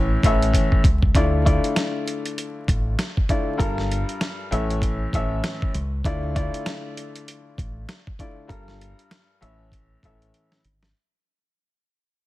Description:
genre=hip hop, boom-bap hip-hop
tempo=98 BPM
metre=4/4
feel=swing 60% on 16ths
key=D harmonic minor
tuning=A4 = 435 Hz
part: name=warm upright piano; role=accompaniment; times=0.0-10.6 s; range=G2 to E5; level=-26 LUFS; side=left 2 dB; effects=cassette tape, high-pass filter, low-pass filter
part: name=deep dub fingered electric bass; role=bass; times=0.0-10.9 s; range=G1 to D2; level=-24 LUFS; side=equal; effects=none
part: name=dusty soul sampler-style drum kit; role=drums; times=0.2-10.9 s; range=hi-hat, kick drum, snare drum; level=-22 LUFS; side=equal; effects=none
room=studio ambience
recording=dense, heavily limited modern master, vinyl crackle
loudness=-20 LUFS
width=side -17 dB against mid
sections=0.0-1.1 A section; 1.1-10.9 B section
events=drum fill 0.5-1.1, 10.3-10.9; fade-out 1.1-10.9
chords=0.0 A; 1.1 Dmadd9; 3.6 Gm7; 4.5 A; 6.0 Dmadd9; 8.5 Gm7; 9.4 A

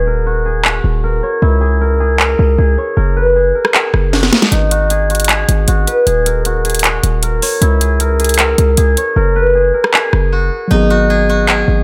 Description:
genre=hip hop, trap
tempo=155 BPM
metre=4/4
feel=half-time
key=G# minor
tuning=A4 = 435 Hz
part: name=steel-string zither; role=melody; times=0.0-11.8 s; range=D#4 to C#5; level=-17 LUFS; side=equal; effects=low-pass filter, digital delay
part: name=hard-hitting 808-style bass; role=bass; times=0.0-11.8 s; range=D#1 to C#2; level=-16 LUFS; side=equal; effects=none
part: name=trap drum kit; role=drums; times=0.6-11.6 s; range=handclaps, hi-hat, rim click, snare drum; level=-16 LUFS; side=equal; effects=none
part: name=mellow tine electric piano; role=accompaniment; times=10.7-11.8 s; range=F#3 to G#4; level=-17 LUFS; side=equal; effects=low-pass filter
room=digital ambience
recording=none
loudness=-13 LUFS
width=mono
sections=0.0-11.8 A section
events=break 0.0-4.5; filter sweep 0.0-10.7; drum fill 4.1-4.5; hi-hats muted 9.2-10.7, 10.7-11.8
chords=0.0 D#m; 1.4 C#m6; 3.0 F#add9; 4.5 G#7(no3); 6.1 D#m; 7.6 C#m6; 9.2 F#add9; 10.7 G#m7

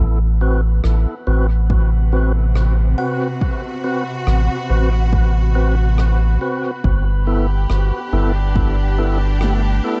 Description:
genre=ambient dub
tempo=70 BPM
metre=4/4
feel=swing 58% on 16ths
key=A dorian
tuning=A4 = 440 Hz
part: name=soft dub sub bass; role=bass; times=0.0-9.8 s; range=G1 to A1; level=-18 LUFS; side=equal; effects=none
part: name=drifting glass-harmonics texture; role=texture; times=0.3-10.0 s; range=B3 to B4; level=-35 LUFS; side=equal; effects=chorus, built-in reverb
part: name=tonewheel organ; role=stabs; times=0.4-10.0 s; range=B3 to B4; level=-27 LUFS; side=equal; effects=overdrive, fast rotary speaker, dub echo
part: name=rim click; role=drums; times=0.8-9.6 s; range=none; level=-36 LUFS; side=equal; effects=dub echo
part: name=electronic kick drum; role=drums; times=1.7-8.8 s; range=none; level=-23 LUFS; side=equal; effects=overdrive
part: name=bright studio string section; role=sustained chords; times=1.8-10.0 s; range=C3 to G4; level=-29 LUFS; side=equal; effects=none
part: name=buzzing kalimba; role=arpeggios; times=3.0-10.0 s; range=A3 to F#5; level=-33 LUFS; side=equal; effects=dub echo
room=studio reverb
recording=dark, warm production, nothing above 8.0 kHz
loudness=-17 LUFS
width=mono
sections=0.0-10.0 A section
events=none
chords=0.0 Am69; 6.8 G69

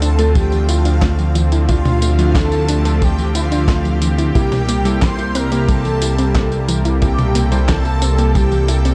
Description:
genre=synthwave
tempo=90 BPM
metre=4/4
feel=straight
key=unclear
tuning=A4 = 442 Hz
part: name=expressive portamento lead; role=melody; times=0.0-8.9 s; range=F4 to C5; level=-25 LUFS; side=equal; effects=ensemble chorus, tape echo, shimmer reverb
part: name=string machine, violins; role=second line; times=0.0-8.9 s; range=F5 to C6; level=-36 LUFS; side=equal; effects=ensemble chorus, shimmer reverb
part: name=soft supersaw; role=sustained chords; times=0.0-8.9 s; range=C3 to A4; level=-27 LUFS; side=equal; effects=phaser, sidechain pumping, shimmer reverb
part: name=soft round pluck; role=arpeggios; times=0.0-8.9 s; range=E3 to E4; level=-26 LUFS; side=equal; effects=chorus, cassette tape, tape echo, shimmer reverb
part: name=clear electric grand piano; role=stabs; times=0.0-8.9 s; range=A3 to C5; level=-29 LUFS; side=equal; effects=shimmer reverb
part: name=chorused synth bass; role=bass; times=0.0-8.9 s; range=C2 to D2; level=-19 LUFS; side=equal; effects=sidechain pumping
part: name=clean 12-bit digital drum machine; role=drums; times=0.0-8.9 s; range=handclaps, hi-hat, snare drum, tambourine, toms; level=-26 LUFS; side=equal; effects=none
part: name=kick drum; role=drums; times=0.4-8.5 s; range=none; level=-20 LUFS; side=equal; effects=none
room=light reverb, digital ambience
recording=dark, warm production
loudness=-16 LUFS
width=mono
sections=0.0-8.9 A section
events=none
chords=0.0 Dmadd9; 4.4 C7

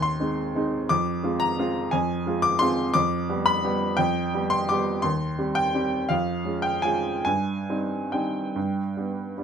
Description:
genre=classical, piano waltz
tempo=135-185 BPM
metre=3/4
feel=rubato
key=C minor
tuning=A4 = 440 Hz
part: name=warm upright piano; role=solo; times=0.0-9.4 s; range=Eb2 to D6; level=-23 LUFS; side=equal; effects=none
room=light reverb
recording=none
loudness=-22 LUFS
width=side -7 dB against mid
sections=0.0-9.4 A section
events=none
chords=0.0 Ab; 0.9 Dm7b5/F; 2.9 G7/F; 5.0 Cm/Eb; 6.1 Db/F; 7.3 Cm/G; 8.6 G

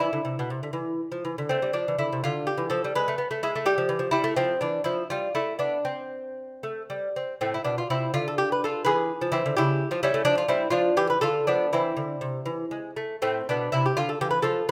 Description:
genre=classical, baroque-style dance for lute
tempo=76-86 BPM (dotted quarters)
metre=6/8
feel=rubato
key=A minor, C major from 4.3 s, A minor from 7.4 s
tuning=A4 = 440 Hz
part: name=lute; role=solo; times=0.0-14.7 s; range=A2 to B4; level=-26 LUFS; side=equal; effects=none
room=moderate recital hall reverb, RT60 1.4 s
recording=none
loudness=-26 LUFS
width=mono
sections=0.0-7.4 A section; 7.4-14.7 A section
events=none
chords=0.0 Bmadd11; 0.7 Dmadd9; 1.5 Am; 2.2 Dmadd11; 2.9 Eadd11/G#; 3.6 A5; 4.3 Dm9; 5.1 G; 5.8 C5; 7.4 Am; 8.1 Dmadd11; 8.8 E; 9.5 A7/C#; 10.3 Dm/F; 11.7 Cadd9; 12.5 E; 13.2 Am; 14.0 Dm69

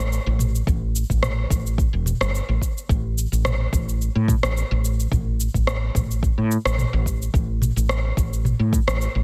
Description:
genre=organic downtempo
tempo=108 BPM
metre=4/4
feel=swing 54% on 16ths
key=unclear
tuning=A4 = 440 Hz
part: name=woody fretless electric bass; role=bass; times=0.0-9.2 s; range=E1 to A2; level=-24 LUFS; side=equal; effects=tube saturation, subtle chorus
part: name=afro-pop drum kit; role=drums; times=0.0-9.1 s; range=cabasa, rim click, toms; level=-28 LUFS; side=equal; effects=small room reverb, slapback echo
part: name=electronic kick drum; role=drums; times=0.7-8.8 s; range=none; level=-25 LUFS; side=equal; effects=small room reverb
room=light reverb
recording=none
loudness=-22 LUFS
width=mono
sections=0.0-9.2 A section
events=none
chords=none

